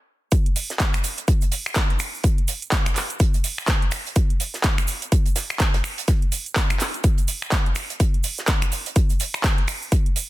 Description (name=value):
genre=house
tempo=125 BPM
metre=4/4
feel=swing 59% on 16ths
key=none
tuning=none
part: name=big-room dance drum kit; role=drums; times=0.3-10.3 s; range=finger snaps, handclaps, hi-hat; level=-26 LUFS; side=right 1 dB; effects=none
part: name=damped 70s drum kit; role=drums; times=0.3-10.3 s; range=hi-hat, snare drum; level=-34 LUFS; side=right 5 dB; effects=high-pass filter on hats, soft clipping on snare, high-pass filter on snare, high-pass filter on room
part: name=electronic kick drum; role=drums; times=0.3-10.0 s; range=none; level=-19 LUFS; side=equal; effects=high-pass filter on kick
part: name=egg shaker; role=percussion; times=0.3-10.3 s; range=none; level=-33 LUFS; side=right 5 dB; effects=none
room=small room ambience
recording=dense, heavily limited modern master, high-pass filter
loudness=-20 LUFS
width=side -17 dB against mid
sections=0.3-10.3 A section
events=stop 0.0-0.3; drop 0.3-10.3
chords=none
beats=| 0.32 0.80 1.28 1.76 | 2.24 2.72 3.20 3.68 | 4.16 4.64 5.12 5.60 | 6.08 6.56 7.04 7.52 | 8.00 8.48 8.96 9.44 | 9.92